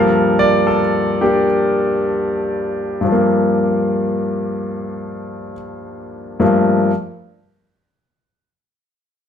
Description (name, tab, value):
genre	solo jazz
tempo	free time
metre	none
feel	none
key	G minor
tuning	A4 = 442 Hz
part	warm concert grand piano	solo	0.0-6.9 s	G2 to D5	-15 LUFS	left 1 dB	none
room	wet large studio reverb, RT60 0.9 s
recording	band playing live in one room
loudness	-14 LUFS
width	side -8 dB against mid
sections	0.0-6.4 A section; 6.4-9.3 B section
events	none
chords	0.0 Gm9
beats	free time